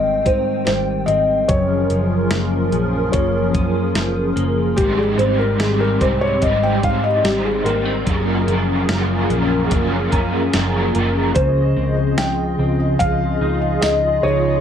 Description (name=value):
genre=dream pop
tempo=73 BPM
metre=4/4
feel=straight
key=unclear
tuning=A4 = 440 Hz
part: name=felt-muted upright piano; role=melody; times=0.0-14.6 s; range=G4 to G5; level=-20 LUFS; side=left 1 dB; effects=ping-pong delay
part: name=hollow soft pad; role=sustained chords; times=0.0-14.6 s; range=Db3 to G5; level=-22 LUFS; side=equal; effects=ensemble chorus
part: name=clean electric guitar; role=arpeggios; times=0.0-14.6 s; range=Gb2 to G4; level=-22 LUFS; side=left 1 dB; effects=analog chorus, ping-pong delay
part: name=vintage muted picked electric bass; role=bass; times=0.0-14.6 s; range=Gb1 to Ab2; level=-24 LUFS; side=right 1 dB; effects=none
part: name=crisp 8-bit digital drum machine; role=drums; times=0.3-14.0 s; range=hi-hat, kick drum, snare drum, tambourine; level=-22 LUFS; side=equal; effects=none
part: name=crunchy overdriven guitar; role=accompaniment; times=4.8-11.4 s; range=Ab2 to C5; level=-24 LUFS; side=right 2 dB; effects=tremolo, ensemble chorus
room=moderate studio reverb, RT60 0.5 s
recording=none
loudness=-15 LUFS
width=side -8 dB against mid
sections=0.0-11.4 A section; 11.4-14.6 B section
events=none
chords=0.0 Abmaj7; 1.5 Gbmaj7; 4.8 Abmaj7; 8.1 Gbmaj7; 11.4 Dbmaj9